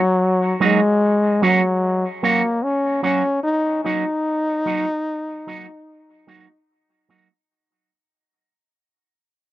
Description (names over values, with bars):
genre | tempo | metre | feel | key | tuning
reggae | 74 BPM | 4/4 | straight | F# major | A4 = 439 Hz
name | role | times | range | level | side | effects
clear trombone | melody | 0.0-6.6 s | F#3 to D#4 | -18 LUFS | left 1 dB | dub echo
electric guitar with an envelope filter | accompaniment | 0.6-7.3 s | F#3 to F#4 | -21 LUFS | right 5 dB | dub echo
room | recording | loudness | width
light reverb | dry, close 1970s-style studio recording | -17 LUFS | side -14 dB against mid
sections
0.0-1.0 A section; 1.0-7.5 B section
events
fade-out 1.0-7.5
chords
0.0 D#m; 1.0 F#; 4.2 D#m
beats
0.19 | 1.00 1.81 2.62 3.43 | 4.25 5.06 5.87 6.68